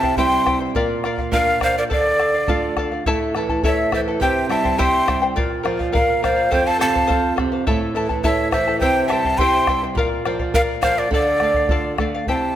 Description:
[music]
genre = andean folk, Andean ensemble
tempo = 104 BPM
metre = 2/4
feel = straight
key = D minor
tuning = A4 = 440 Hz
[part]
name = breathy mellow quena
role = melody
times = 0.0-12.6 s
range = D5 to C6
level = -20 LUFS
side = equal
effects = none
[part]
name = breathy large pan pipes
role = second line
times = 0.0-11.9 s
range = A4 to G5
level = -25 LUFS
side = right 3 dB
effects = none
[part]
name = charango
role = accompaniment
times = 0.0-12.6 s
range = E4 to A5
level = -23 LUFS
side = left 4 dB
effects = none
[part]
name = flamenco guitar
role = accompaniment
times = 0.0-12.6 s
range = F2 to C5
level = -24 LUFS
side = right 4 dB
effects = none
[part]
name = bombo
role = percussion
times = 0.0-12.4 s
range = none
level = -25 LUFS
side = equal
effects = none
[sound]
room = moderate concert hall reverb, RT60 2.0 s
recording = none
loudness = -16 LUFS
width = side -11 dB against mid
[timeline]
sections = 0.0-3.1 A section; 3.1-12.3 A section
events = none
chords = 0.0 C; 0.7 Bb; 1.9 Dm; 3.1 A; 4.2 C; 5.4 Bb; 6.5 F; 7.7 A; 8.8 C; 10.0 Bb; 11.1 Dm

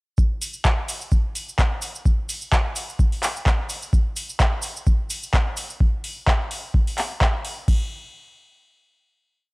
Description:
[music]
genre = house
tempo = 128 BPM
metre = 4/4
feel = swing 56% on 16ths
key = none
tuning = none
[part]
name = electronic kick drum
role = drums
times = 0.2-7.8 s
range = none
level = -19 LUFS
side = equal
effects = none
[part]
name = cabasa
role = percussion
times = 0.2-5.8 s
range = none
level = -32 LUFS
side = right 1 dB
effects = none
[part]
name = electro analog drum machine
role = drums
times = 0.4-7.8 s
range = crash cymbal, handclaps, hi-hat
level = -26 LUFS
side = equal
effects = none
[sound]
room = little or no reverb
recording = dry, gritty hardware recording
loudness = -20 LUFS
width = side -27 dB against mid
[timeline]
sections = 0.2-7.7 groove; 7.7-9.5 final hit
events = none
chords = none

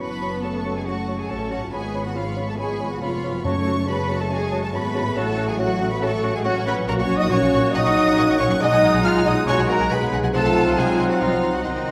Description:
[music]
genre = classical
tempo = 139 BPM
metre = 4/4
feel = straight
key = F# minor, F# major from 6.9 s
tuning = A4 = 439 Hz
[part]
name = clear chamber violin section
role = melody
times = 0.0-11.9 s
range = Eb5 to E#6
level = -35 LUFS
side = equal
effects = none
[part]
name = bright silver concert flute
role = second line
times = 0.0-11.9 s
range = Eb5 to E#6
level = -33 LUFS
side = equal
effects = none
[part]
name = mellow clarinet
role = second line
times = 0.0-11.9 s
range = D#4 to F#4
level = -35 LUFS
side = equal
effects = none
[part]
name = warm oboe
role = second line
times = 0.0-11.9 s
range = F#5 to C#6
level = -35 LUFS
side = equal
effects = none
[part]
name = warm symphonic violin section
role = second line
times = 0.0-11.9 s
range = F#5 to C#6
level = -35 LUFS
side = equal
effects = none
[part]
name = dark bassoon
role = accompaniment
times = 0.0-11.9 s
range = G#3 to C#4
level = -31 LUFS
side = equal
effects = none
[part]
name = rich symphonic viola section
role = accompaniment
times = 0.0-11.9 s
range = F#3 to G#4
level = -30 LUFS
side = equal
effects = none
[part]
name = dark French horn section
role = sustained chords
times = 0.0-11.9 s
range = Eb3 to E#4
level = -29 LUFS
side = equal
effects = none
[part]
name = warm trombone section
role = sustained chords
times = 0.0-11.9 s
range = E#3 to C#4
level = -34 LUFS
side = equal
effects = none
[part]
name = concert harp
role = arpeggios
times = 0.0-11.9 s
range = F#2 to C#5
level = -32 LUFS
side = equal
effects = none
[part]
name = clear symphonic double bass section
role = bass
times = 0.0-11.9 s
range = E#1 to C2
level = -30 LUFS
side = equal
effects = none
[part]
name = rich symphonic cello section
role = bass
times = 0.0-11.9 s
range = Eb4 to D#5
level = -29 LUFS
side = equal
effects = none
[part]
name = timpani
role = percussion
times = 3.4-4.1 s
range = F#2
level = -32 LUFS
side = equal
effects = none
[sound]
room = wet scoring stage reverb, RT60 2.0 s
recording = none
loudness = -21 LUFS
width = mono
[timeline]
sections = 0.0-11.9 A section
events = none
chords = 0.0 F#m; 1.7 C#7/G#; 3.5 F#m; 5.2 F#m/A; 6.9 F#/A#; 8.6 G#m7/B; 10.3 Cdim7

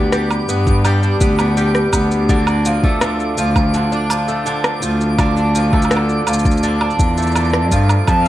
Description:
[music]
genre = folktronica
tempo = 83 BPM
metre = 4/4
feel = straight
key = unclear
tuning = A4 = 441 Hz
[part]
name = fingerpicked twelve-string acoustic guitar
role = arpeggios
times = 0.0-8.3 s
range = F2 to D4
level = -19 LUFS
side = equal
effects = tape echo
[part]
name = warm cello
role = bass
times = 0.0-8.3 s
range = D2 to G2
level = -17 LUFS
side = equal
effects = none
[part]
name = twinkling granular texture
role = texture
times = 0.0-8.3 s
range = D6 to F6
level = -29 LUFS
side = right 2 dB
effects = built-in reverb
[part]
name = electronic rim click, shaker and woodblock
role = drums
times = 0.1-8.3 s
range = none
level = -23 LUFS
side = right 1 dB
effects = overdrive, small room reverb
[part]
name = electronic kick drum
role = drums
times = 0.7-8.2 s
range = none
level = -17 LUFS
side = equal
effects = overdrive, small room reverb
[part]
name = wooden flute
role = melody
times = 8.1-8.3 s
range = A5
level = -16 LUFS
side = right 1 dB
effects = none
[part]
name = dark string quartet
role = sustained chords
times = 8.1-8.3 s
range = F3 to F5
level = -23 LUFS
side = left 1 dB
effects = none
[sound]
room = light reverb, small room ambience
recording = none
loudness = -13 LUFS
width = side -14 dB against mid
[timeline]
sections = 0.0-8.3 A section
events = none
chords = 0.0 G; 2.3 Dm

